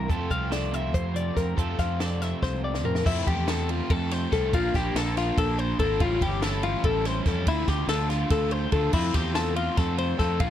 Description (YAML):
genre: math rock and midwest emo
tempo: 286 BPM (eighths)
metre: 7/8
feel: straight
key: F major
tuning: A4 = 439 Hz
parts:
  - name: twelve-string electric guitar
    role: accompaniment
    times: 0.0-3.5 s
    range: F2 to A4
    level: -36 LUFS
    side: right 10 dB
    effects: spring reverb
  - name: twelve-string electric guitar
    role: arpeggios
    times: 0.0-10.5 s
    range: E4 to F5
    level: -28 LUFS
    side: left 6 dB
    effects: none
  - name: overdriven electric guitar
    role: riff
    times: 0.0-10.5 s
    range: F2 to F4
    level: -30 LUFS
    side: right 2 dB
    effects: spring reverb
  - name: growling fingered electric bass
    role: bass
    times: 0.0-10.5 s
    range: G1 to F2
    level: -29 LUFS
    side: equal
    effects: overdrive
  - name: compact cocktail drum kit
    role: drums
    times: 0.1-10.5 s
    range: crash cymbal, hi-hat, kick drum, ride cymbal, snare drum, toms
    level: -29 LUFS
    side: equal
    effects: none
room: light reverb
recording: dark, warm production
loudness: -23 LUFS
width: side -11 dB against mid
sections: 0.0-3.1 A section; 3.1-10.5 B section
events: drum fill 2.4-3.1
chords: 0.1 Fmaj7; 3.1 Fmaj9; 4.5 Bbmaj9; 6.0 A7alt; 7.5 Dm9; 8.9 Fmaj9